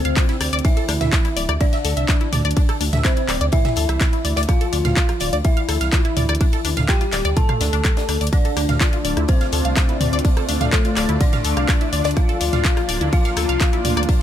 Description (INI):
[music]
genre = melodic techno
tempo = 125 BPM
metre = 4/4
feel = straight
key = unclear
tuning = A4 = 440 Hz
[part]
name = soft octave-layered synth lead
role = melody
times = 0.0-14.2 s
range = A3 to A4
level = -26 LUFS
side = left 2 dB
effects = chorus, sidechain pumping, tape echo
[part]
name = dark detuned synth bell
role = second line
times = 0.0-14.2 s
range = A4 to A5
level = -30 LUFS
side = right 1 dB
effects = chorus, phaser, sidechain pumping, ping-pong delay
[part]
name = tight sequenced synth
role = arpeggios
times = 0.1-14.1 s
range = D4 to F5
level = -26 LUFS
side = left 2 dB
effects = chorus, phaser, sidechain pumping, ping-pong delay
[part]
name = dark detuned saw bass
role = bass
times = 0.1-14.1 s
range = D1 to D2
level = -22 LUFS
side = equal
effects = sidechain pumping
[part]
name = house drum kit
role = drums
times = 0.1-14.2 s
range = handclaps, hi-hat, rim click, toms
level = -24 LUFS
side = equal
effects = none
[part]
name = electronic kick drum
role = drums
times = 0.2-14.2 s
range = none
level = -18 LUFS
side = equal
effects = none
[part]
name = oversized low-tuned drum kit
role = drums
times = 0.2-14.2 s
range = hi-hat, snare drum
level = -34 LUFS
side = left 2 dB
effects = sidechain pumping on hats, high-pass filter on hats, high-pass filter on snare, high-pass filter on room
[part]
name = lush unison pad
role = sustained chords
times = 8.3-14.2 s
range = A3 to F5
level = -28 LUFS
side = equal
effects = chorus, phaser, sidechain pumping
[sound]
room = digital ambience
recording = none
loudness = -16 LUFS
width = side -10 dB against mid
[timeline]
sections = 0.0-14.2 A section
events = none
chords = 0.0 Dm9; 0.6 Am/D (rootless); 4.5 F/D; 12.2 Bb/D